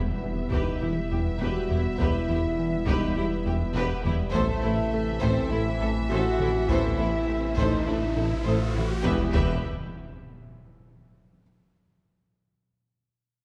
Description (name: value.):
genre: cinematic, hybrid orchestral and electronic film score.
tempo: 102 BPM.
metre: 4/4.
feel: straight.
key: E minor.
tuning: A4 = 441 Hz.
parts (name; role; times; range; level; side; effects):
rich symphonic violin section; melody; 0.0-9.7 s; E5; -41 LUFS; equal; none.
mellow French horn section; sustained chords; 0.0-9.3 s; E3 to F#4; -33 LUFS; equal; none.
mellow trombone section; sustained chords; 0.0-9.3 s; C3 to B3; -40 LUFS; equal; none.
warm analog pad; sustained chords; 0.0-9.4 s; C3 to E5; -38 LUFS; equal; none.
chorused synth bass; riff; 0.0-8.9 s; E2 to A3; -35 LUFS; equal; none.
dark detuned saw bass; bass; 0.0-9.7 s; E1 to A1; -35 LUFS; equal; none.
warm tuba; bass; 0.0-9.6 s; E1 to A1; -38 LUFS; equal; none.
impact and riser; sound effects; 0.0-11.4 s; none; -40 LUFS; equal; none.
dark concert grand piano; texture; 0.2-9.1 s; B3 to D#6; -45 LUFS; equal; none.
warm symphonic violin section; second line; 0.5-9.7 s; E4 to C5; -37 LUFS; equal; none.
clear symphonic viola section; accompaniment; 0.5-9.7 s; G4 to A4; -39 LUFS; equal; none.
clear symphonic cello section; bass; 0.5-9.7 s; E2 to A2; -37 LUFS; equal; none.
warm symphonic double bass section; bass; 0.5-9.7 s; E1 to A1; -36 LUFS; equal; none.
taiko ensemble; drums; 0.5-10.5 s; none; -34 LUFS; equal; none.
room: moderate scoring stage reverb, RT60 1.7 s.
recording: dark, warm production.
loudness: -26 LUFS.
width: mono.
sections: 0.0-9.1 A section; 9.1-11.4 B section.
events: impact 0.0-2.0, 9.1-11.4; riser 6.7-9.1.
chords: 0.0 Em; 4.3 Am; 9.1 Em.